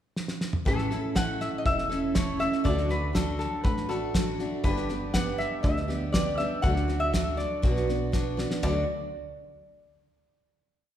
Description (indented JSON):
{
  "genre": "honky-tonk and classic country",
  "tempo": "120 BPM",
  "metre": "4/4",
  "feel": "straight",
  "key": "D major",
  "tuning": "A4 = 440 Hz",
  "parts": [
    { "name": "cloth-damped thuddy drum kit", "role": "drums", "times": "0.2-8.7 s", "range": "hi-hat, kick drum, ride cymbal, snare drum, toms", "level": "-29 LUFS", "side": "equal", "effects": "none" },
    { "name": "lap resonator guitar", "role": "melody", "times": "0.7-8.9 s", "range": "A4 to F#5", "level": "-31 LUFS", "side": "left 1 dB", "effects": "none" },
    { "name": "picked steel-string acoustic guitar", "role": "accompaniment", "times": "0.7-8.8 s", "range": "G2 to A4", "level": "-31 LUFS", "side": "right 1 dB", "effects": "none" },
    { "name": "plucky analog bass", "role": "bass", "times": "0.7-8.9 s", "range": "E1 to D2", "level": "-32 LUFS", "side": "equal", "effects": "none" }
  ],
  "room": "wet recital hall reverb, RT60 1.5 s",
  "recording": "recorded in a church or concert hall",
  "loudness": "-25 LUFS",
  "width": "side -10 dB against mid",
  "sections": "0.0-0.7 pickup bar; 0.7-8.6 interlude; 8.6-10.6 final chord",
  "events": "drum fill 0.2-0.7, 8.1-8.6",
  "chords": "0.0 N.C.; 0.7 A; 2.7 D; 4.6 G; 6.6 D; 7.6 Bm; 8.6 D",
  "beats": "0.17 | 0.66 1.16 1.66 2.16 | 2.66 3.15 3.65 4.15 | 4.65 5.14 5.64 6.14 | 6.64 7.14 7.63 8.13 | 8.63"
}